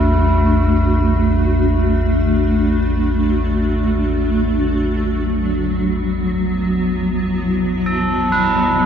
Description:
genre	dark ambient drone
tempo	free time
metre	none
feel	none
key	unclear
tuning	A4 = 438 Hz
part	granular cloud pad	sustained chords	0.0-8.9 s	F#3 to F#4	-17 LUFS	equal	built-in reverb
part	tubular bells	arpeggios	0.0-8.9 s	E4 to B4	-22 LUFS	right 1 dB	diffuse ambient delay
part	deep rumbling drone	drone	0.0-8.9 s	A1 to E2	-19 LUFS	equal	built-in reverb, wide subtle chorus
room	wet cathedral reverb, RT60 6.3 s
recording	dark, warm production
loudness	-15 LUFS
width	side -8 dB against mid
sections	0.0-8.9 A section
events	filter sweep on synth drone 0.0-8.9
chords	0.0 D; 4.7 F#m

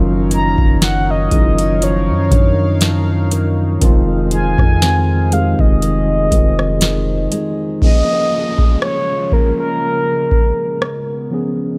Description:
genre	contemporary R&B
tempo	60 BPM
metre	4/4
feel	swing 54% on 16ths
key	Db major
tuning	A4 = 440 Hz
part	mellow tine electric piano	accompaniment	0.0-11.8 s	Eb3 to Bb4	-22 LUFS	equal	none
part	chorused pulse-width pad	sustained chords	0.0-11.8 s	Db3 to F5	-30 LUFS	equal	sidechain pumping
part	nylon-string guitar	arpeggios	0.0-8.4 s	F2 to Eb4	-27 LUFS	equal	tape echo
part	long sustained 808-style bass	bass	0.0-7.3 s	F1 to Gb2	-20 LUFS	equal	none
part	mellow horn-like synth lead	melody	0.3-11.3 s	Bb4 to Bb5	-22 LUFS	equal	chorus, tape echo
part	booming analog drum machine	drums	0.3-11.1 s	hi-hat, kick drum, rim click, snare drum	-16 LUFS	equal	none
part	downlifter	sound effects	7.8-11.8 s	none	-33 LUFS	equal	none
room	little or no reverb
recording	none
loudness	-15 LUFS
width	mono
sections	0.0-7.8 A section; 7.8-11.8 B section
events	none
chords	0.0 Ebm9/Gb; 3.8 Fm7; 7.8 Db6; 10.8 Db7

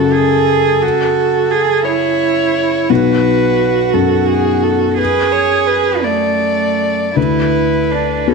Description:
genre	neoclassical piano and strings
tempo	57 BPM (dotted quarters)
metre	6/8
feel	rubato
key	B dorian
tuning	A4 = 439 Hz
part	dark violin	melody	0.0-8.3 s	G#4 to D5	-17 LUFS	left 4 dB	none
part	warm cello	second line	0.0-8.3 s	A3 to G#4	-15 LUFS	right 11 dB	none
part	felt-muted upright piano	accompaniment	0.0-8.3 s	B1 to F#4	-17 LUFS	left 7 dB	none
room	moderate echo chamber reverb, RT60 2.0 s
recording	1960s-style stereo with parts hard left and right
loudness	-12 LUFS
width	side -4 dB against mid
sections	0.0-8.3 A section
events	none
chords	0.0 F#madd9; 2.9 Bm7; 7.2 D5

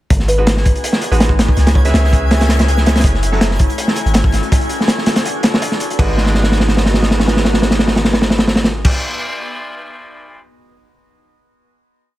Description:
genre	drum and bass, jungle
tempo	163 BPM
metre	4/4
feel	straight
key	G# phrygian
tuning	A4 = 435 Hz
part	warbly tape-like pad	sustained chords	0.3-8.9 s	B3 to E5	-24 LUFS	equal	chorus, built-in reverb
part	long sustained 808-style bass	bass	0.1-8.9 s	F#1 to C#2	-15 LUFS	equal	none
part	crunchy breakbeat drum kit	drums	0.1-10.4 s	crash cymbal, hi-hat, kick drum, snare drum	-14 LUFS	equal	none
part	twinkling granular texture	texture	0.5-6.0 s	G#5 to G#6	-27 LUFS	left 1 dB	built-in reverb
part	kalimba	melody	0.3-2.1 s	G#4 to C#5	-24 LUFS	equal	dub echo
part	bright concert grand piano	stabs	0.4-3.4, 6.0-8.9 s	F#3 to E5	-24 LUFS	right 2 dB	dub echo
part	crunchy breakbeat drum kit	drums	3.0-4.5 s	hi-hat, snare drum	-29 LUFS	left 1 dB	none
room	small room ambience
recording	none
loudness	-12 LUFS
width	side -15 dB against mid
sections	0.1-6.0 drop; 6.0-8.9 final chord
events	drop 0.1-6.0; drum fill 6.2-8.8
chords	0.1 G#m7; 1.6 C#m7; 3.0 F#m7; 4.5 Bm7; 6.0 G#m7

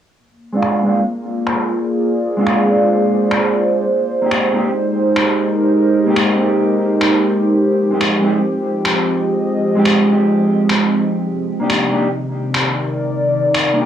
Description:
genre	future garage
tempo	130 BPM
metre	4/4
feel	swing 66% on 16ths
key	unclear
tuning	A4 = 440 Hz
part	warbly tape-like pad	sustained chords	0.8-13.9 s	C3 to Eb5	-16 LUFS	equal	chorus, built-in reverb, cassette tape
part	mellow electric guitar	accompaniment	0.5-13.9 s	Ab3 to G4	-19 LUFS	right 1 dB	low-pass filter, cassette tape, tape echo
part	electronic finger snaps	drums	0.6-13.7 s	none	-20 LUFS	left 1 dB	low-pass filter on snare, cassette tape, low-pass filter on room
room	wet studio reverb, RT60 0.6 s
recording	home recording on cassette, small room ambience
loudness	-14 LUFS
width	side -10 dB against mid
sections	0.2-13.9 A section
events	filter sweep on drum 0.2-13.9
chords	0.2 Bb7; 3.9 Abmaj7; 7.5 Fm7; 11.2 Cm7

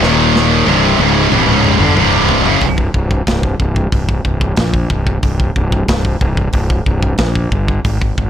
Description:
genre	heavy metal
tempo	92 BPM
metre	4/4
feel	straight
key	C minor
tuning	A4 = 439 Hz
part	heavy high-gain guitar	riff	0.0-2.6 s	C2 to Eb3	-14 LUFS	right 13 dB	distortion
part	thick fuzz guitar	riff	0.0-2.6 s	C2 to Eb3	-18 LUFS	equal	distortion
part	tight distorted guitar	riff	0.0-2.6 s	C2 to Eb3	-15 LUFS	left 13 dB	distortion
part	fuzz fingered electric bass	bass	0.0-8.3 s	C1 to Bb1	-16 LUFS	equal	overdrive
part	tight metal drum kit	drums	0.0-8.3 s	hi-hat, kick drum, snare drum, toms	-17 LUFS	equal	none
room	little or no reverb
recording	blown-out, overdriven recording, overdrive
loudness	-11 LUFS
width	side -9 dB against mid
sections	0.0-2.6 A section; 2.6-8.3 B section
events	drum fill 0.0-2.6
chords	0.0 Eb5; 0.7 C5

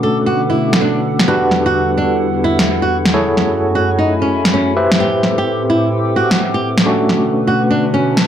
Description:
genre	UK garage, two-step garage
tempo	129 BPM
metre	4/4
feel	swing 63% on 16ths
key	E minor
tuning	A4 = 442 Hz
part	flamenco guitar	melody	0.0-8.2 s	C#4 to A4	-18 LUFS	right 1 dB	none
part	airy breathy pad	sustained chords	0.0-8.3 s	E2 to G#5	-21 LUFS	left 1 dB	chorus
part	overdriven tine electric piano	stabs	0.0-8.3 s	A3 to E5	-18 LUFS	equal	fast tremolo, low-pass filter, digital delay
part	warbly tape-like pad	texture	0.0-8.3 s	B3 to D6	-22 LUFS	right 1 dB	chorus, built-in reverb
part	electronic snare drum	drums	0.7-8.2 s	none	-16 LUFS	equal	overdrive
room	moderate plate reverb, RT60 1.3 s, digital ambience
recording	dark, warm production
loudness	-12 LUFS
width	side -9 dB against mid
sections	0.0-8.3 A section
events	none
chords	0.0 Bm9; 1.3 Em9; 3.1 F#m9; 4.8 Am9; 6.9 Bm9

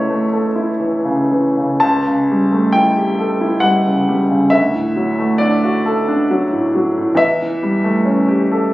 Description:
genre	classical, romantic nocturne for solo piano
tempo	56-70 BPM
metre	3/4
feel	rubato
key	unclear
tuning	A4 = 440 Hz
part	warm grand piano	solo	0.0-8.7 s	C#2 to A5	-13 LUFS	equal	none
room	light reverb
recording	recorded on a phone in the room, studio reverb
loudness	-13 LUFS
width	side -17 dB against mid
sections	0.0-8.7 A section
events	none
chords	0.0 A/C#; 1.8 A7/C#; 4.5 D; 7.2 A7/E

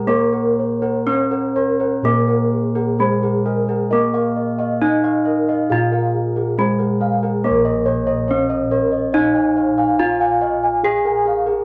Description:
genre	Javanese gamelan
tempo	60-71 BPM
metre	4/4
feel	straight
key	Bb slendro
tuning	A4 = 440 Hz
part	gamelan-type bronze metallophone	melody	0.0-11.6 s	Ab3-25c to Ab4-25c	-22 LUFS	equal	none
part	gamelan-type bossed gongs	arpeggios	0.0-11.6 s	Ab4-25c to Ab5-25c	-25 LUFS	equal	none
part	gamelan-type bronze metallophone	arpeggios	0.0-11.6 s	Ab4-25c to Ab5-25c	-25 LUFS	equal	none
part	gamelan-type bossed gongs	bass	0.0-11.6 s	Bb1 to Bb4	-26 LUFS	equal	none
room	moderate studio reverb, RT60 0.5 s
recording	none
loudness	-18 LUFS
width	mono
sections	0.0-7.4 A section; 7.4-11.6 B section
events	none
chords	none

